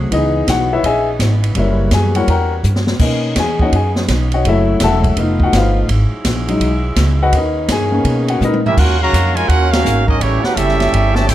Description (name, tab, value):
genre	jazz, big band swing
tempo	167 BPM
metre	4/4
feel	swing 65% on 8ths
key	unclear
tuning	A4 = 441 Hz
part	warm concert grand piano	accompaniment	0.0-8.6 s	E3 to A#5	-16 LUFS	left 3 dB	none
part	bright saxophone section	sustained chords	0.0-11.3 s	B#2 to G#4	-27 LUFS	right 2 dB	none
part	upright bass	bass	0.0-11.3 s	E1 to B2	-16 LUFS	equal	none
part	open jazz drum kit	drums	0.1-11.3 s	crash cymbal, hi-hat, kick drum, ride cymbal, snare drum, toms	-20 LUFS	equal	none
part	bright trombone section	second line	8.6-11.3 s	Db3 to G4	-20 LUFS	right 3 dB	none
part	mellow trumpet section	melody	8.7-11.3 s	A3 to Bb5	-16 LUFS	right 2 dB	none
room	light reverb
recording	close, detailed microphones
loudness	-12 LUFS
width	side -13 dB against mid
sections	0.0-8.8 A section; 8.8-11.3 B section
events	grand piano solo 0.0-8.8; drum fill 2.6-3.0, 8.4-8.8; band accent 9.7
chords	0.1 C#m9; 1.6 F#7b9; 3.0 Bmaj9; 4.4 F#m7; 5.2 F7#11; 5.9 Emaj9; 7.3 D#7b13; 8.8 Ebm9; 10.2 A7